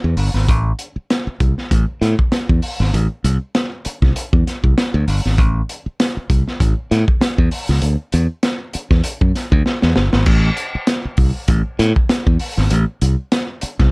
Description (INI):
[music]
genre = funk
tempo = 98 BPM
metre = 4/4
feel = swing 56% on 16ths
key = A dorian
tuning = A4 = 440 Hz
[part]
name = modern bright fingered electric bass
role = bass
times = 0.0-13.9 s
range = G1 to A2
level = -15 LUFS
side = equal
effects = none
[part]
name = crunchy breakbeat drum kit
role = drums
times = 0.2-13.9 s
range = crash cymbal, hi-hat, kick drum, snare drum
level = -17 LUFS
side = equal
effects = none
[sound]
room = little or no reverb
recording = none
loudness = -14 LUFS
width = side -33 dB against mid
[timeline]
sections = 0.0-10.3 A section; 10.3-13.9 B section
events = drum fill 9.7-10.3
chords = none